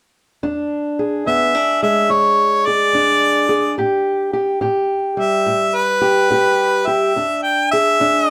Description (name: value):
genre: acoustic country blues, solo or duo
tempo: 71 BPM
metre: 4/4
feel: swing 66% on 8ths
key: unclear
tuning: A4 = 440 Hz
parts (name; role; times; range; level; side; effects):
- fingerpicked old ladder-braced acoustic guitar; accompaniment; 0.4-8.3 s; E2 to G#4; -21 LUFS; equal; none
- bright harmonica; melody; 1.3-8.3 s; B4 to G5; -17 LUFS; equal; none
room: moderate studio reverb, RT60 0.8 s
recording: none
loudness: -17 LUFS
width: mono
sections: 0.4-8.3 A section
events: harmonica solo 0.4-8.3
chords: 0.4 E7; 3.8 Emadd11/A; 7.2 E7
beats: | 0.43 1.27 2.11 2.95 | 3.79 4.63 5.47 6.31 | 7.15 8.00